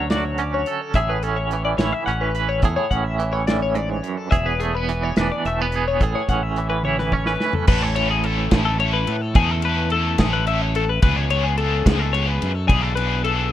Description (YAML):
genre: math rock and midwest emo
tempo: 72 BPM (dotted quarters)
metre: 6/8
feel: straight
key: A major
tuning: A4 = 440 Hz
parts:
  - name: twangy electric guitar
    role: accompaniment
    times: 0.0-9.4 s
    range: E2 to B4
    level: -25 LUFS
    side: right 7 dB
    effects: tremolo
  - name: twelve-string electric guitar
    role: arpeggios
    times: 0.0-13.5 s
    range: G#4 to F#5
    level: -24 LUFS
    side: left 6 dB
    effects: analog chorus, tape echo
  - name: growling fingered electric bass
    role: bass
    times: 0.0-13.5 s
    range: E1 to A2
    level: -24 LUFS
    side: equal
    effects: overdrive
  - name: modern studio drum kit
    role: drums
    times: 0.1-13.4 s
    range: crash cymbal, hi-hat, kick drum, ride cymbal, snare drum, toms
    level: -22 LUFS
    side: equal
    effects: none
  - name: biting overdriven guitar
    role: riff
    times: 7.7-13.5 s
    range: E3 to A4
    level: -25 LUFS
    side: equal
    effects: harmonic tremolo
room: small room ambience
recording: rough home demo mix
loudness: -18 LUFS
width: side -12 dB against mid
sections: 0.0-7.7 A section; 7.7-13.5 B section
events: drum fill 6.8-7.7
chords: 0.0 Dmaj7; 1.0 Amaj7; 4.3 E7; 6.0 Amaj7; 7.7 Amaj9; 11.0 C#7; 12.7 E7sus4/B